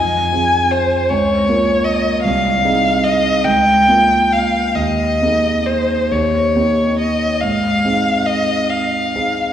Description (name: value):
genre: classical, romantic duo for violin and grand piano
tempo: 43-53 BPM (dotted quarters)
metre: 6/8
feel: rubato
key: Ab major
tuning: A4 = 442 Hz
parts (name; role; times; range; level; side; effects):
- rich violin; melody; 0.0-9.5 s; C5 to Ab5; -15 LUFS; left 1 dB; none
- warm concert grand piano; accompaniment; 0.0-9.5 s; C2 to Bb4; -18 LUFS; right 2 dB; none
room: wet church reverb, RT60 2.7 s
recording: recorded in a church or concert hall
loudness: -13 LUFS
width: side -10 dB against mid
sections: 0.0-9.5 A section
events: none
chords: 0.0 Fm; 1.1 Bbm/Db; 2.3 Ab/C; 3.5 Bbm/Db; 4.8 Ebsus4; 6.1 Eb; 7.4 Ab